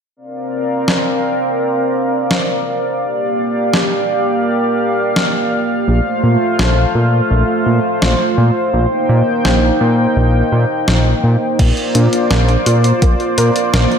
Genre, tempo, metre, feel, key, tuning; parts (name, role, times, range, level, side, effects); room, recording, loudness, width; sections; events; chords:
synthwave; 84 BPM; 4/4; straight; Bb major; A4 = 442 Hz
chorused pulse-width pad; sustained chords; 0.2-14.0 s; A3 to G5; -15 LUFS; equal; sidechain pumping
clean 12-bit digital drum machine; drums; 0.9-14.0 s; crash cymbal, hi-hat, snare drum; -19 LUFS; equal
fat analog bass; bass; 5.9-13.9 s; Bb1 to Bb2; -13 LUFS; equal
warbly dusty pluck; arpeggios; 11.6-13.9 s; Bb3 to Bb4; -21 LUFS; right 2 dB; chorus, cassette tape, analog delay
electronic kick drum; drums; 11.6-13.2 s; -14 LUFS; equal; overdrive
wet lush hall reverb, RT60 1.6 s; dreamy mix soaked in reverb; -12 LUFS; side -7 dB against mid
0.2-11.6 A section; 11.6-14.0 B section
0.2 Bbadd9; 3.0 Gm7/Bb; 5.9 F/Bb; 8.7 Cm7/Bb; 11.6 Bbadd9